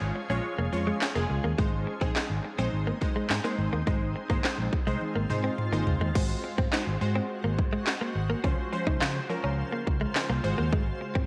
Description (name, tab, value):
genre	dance-pop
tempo	105 BPM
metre	4/4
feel	straight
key	unclear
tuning	A4 = 440 Hz
part	funky polysynth comp	accompaniment	0.0-11.2 s	F3 to Db5	-36 LUFS	equal	chorus, sidechain pumping
part	shimmering ambient pad	sustained chords	0.0-11.3 s	Db3 to C5	-40 LUFS	equal	chorus, built-in reverb, sidechain pumping
part	fingered electric bass	bass	0.0-11.2 s	F1 to Db3	-33 LUFS	equal	sidechain pumping
part	direct-recorded clean electric guitar	riff	0.2-11.2 s	Ab3 to F4	-37 LUFS	equal	subtle chorus
part	house drum kit	drums	1.0-11.3 s	crash cymbal, handclaps, kick drum, snare drum, toms	-32 LUFS	equal	overdrive
room	moderate echo chamber reverb, RT60 1.8 s, digital ambience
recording	none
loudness	-29 LUFS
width	mono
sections	0.0-6.2 A section; 6.2-11.3 B section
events	drum fill 5.0-6.2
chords	0.0 Db; 1.6 Ab; 6.2 Ab7; 8.4 Dbmaj7; 10.4 Ab7